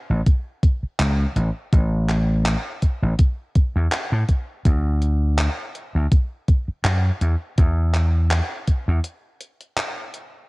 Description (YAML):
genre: vaporwave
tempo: 82 BPM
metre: 4/4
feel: swing 55% on 16ths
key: unclear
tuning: A4 = 440 Hz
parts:
  - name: vintage slap bass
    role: bass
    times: 0.1-9.0 s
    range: A1 to A2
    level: -19 LUFS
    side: equal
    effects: tube saturation
  - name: electronic kick drum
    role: drums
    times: 0.3-8.8 s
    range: none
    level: -16 LUFS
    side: equal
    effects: none
  - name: gated 80s digital drum machine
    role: drums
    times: 0.3-10.3 s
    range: handclaps, hi-hat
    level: -27 LUFS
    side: equal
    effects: gated reverb
room: little or no reverb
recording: dark, warm production, cassette tape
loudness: -18 LUFS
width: side -24 dB against mid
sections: 0.0-10.5 A section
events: break 9.0-10.5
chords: none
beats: 0.26 0.99 | 1.72 2.46 3.19 3.92 | 4.65 5.38 6.12 6.85 | 7.58 8.31 9.04 9.77